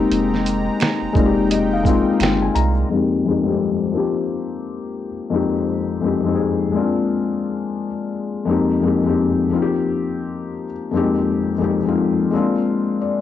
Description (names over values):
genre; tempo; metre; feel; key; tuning
lo-fi hip hop; 86 BPM; 4/4; swing 59% on 16ths; F dorian; A4 = 439 Hz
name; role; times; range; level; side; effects
felt-muted upright piano; accompaniment; 0.0-13.2 s; F2 to Bb5; -18 LUFS; left 4 dB; low-pass filter, cassette tape
warm analog pad; sustained chords; 0.0-2.9 s; Ab3 to Bb5; -27 LUFS; right 1 dB; chorus, cassette tape
soft dub sub bass; bass; 0.0-2.8 s; F1 to C2; -23 LUFS; right 2 dB; none
lo-fi sampler-style drum kit; drums; 0.1-2.7 s; finger snaps, hi-hat, kick drum, shaker, snare drum; -20 LUFS; right 2 dB; none
finger snaps; percussion; 0.8-2.4 s; none; -32 LUFS; right 13 dB; none
room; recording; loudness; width
wet studio reverb, RT60 0.6 s; home recording on cassette; -17 LUFS; side -11 dB against mid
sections
0.0-2.9 A section; 2.9-13.2 B section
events
filter sweep on felt piano 2.9-13.2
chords
0.0 Fm11; 3.9 Eb6; 5.3 Fm11; 6.7 Bb9; 8.5 Fm11; 9.5 Eb6; 10.9 Fm11; 12.3 Bb9